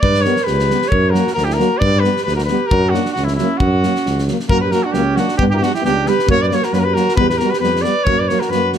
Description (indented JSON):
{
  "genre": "balkan folk, Balkan brass band",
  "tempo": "134 BPM",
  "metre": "2/4",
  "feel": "swing 54% on 16ths",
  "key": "F# phrygian dominant",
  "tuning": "A4 = 442 Hz",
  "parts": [
    { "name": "clear trumpet", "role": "melody", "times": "0.0-8.7 s", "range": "E4 to D5", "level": "-18 LUFS", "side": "left 2 dB", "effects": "none" },
    { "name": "mellow alto saxophone", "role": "second line", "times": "0.0-8.8 s", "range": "C#4 to B4", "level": "-22 LUFS", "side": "right 7 dB", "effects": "none" },
    { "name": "mellow tuba", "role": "bass", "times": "0.0-8.7 s", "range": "C#2 to G2", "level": "-19 LUFS", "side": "equal", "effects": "none" },
    { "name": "loose indie drum kit", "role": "percussion", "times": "0.0-8.8 s", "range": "kick drum, snare drum", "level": "-22 LUFS", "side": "equal", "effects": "none" },
    { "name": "dark euphonium", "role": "accompaniment", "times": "0.2-8.8 s", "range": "F#3 to G3", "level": "-24 LUFS", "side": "right 8 dB", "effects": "none" },
    { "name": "warm French horn", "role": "accompaniment", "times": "0.3-8.8 s", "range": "A#3 to B3", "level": "-23 LUFS", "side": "left 8 dB", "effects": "none" }
  ],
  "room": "light reverb",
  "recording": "close, detailed microphones",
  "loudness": "-13 LUFS",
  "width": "side -9 dB against mid",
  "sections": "0.0-4.5 A section; 4.5-8.8 B section",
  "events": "none",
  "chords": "0.0 G; 0.9 F#; 1.8 G; 2.7 F#; 5.4 G; 6.3 F#; 7.2 Em; 8.1 F#",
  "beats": "| 0.02 0.47 | 0.92 1.37 | 1.82 2.27 | 2.71 3.16 | 3.61 4.05 | 4.50 4.95 | 5.39 5.84 | 6.28 6.73 | 7.17 7.62 | 8.06 8.50"
}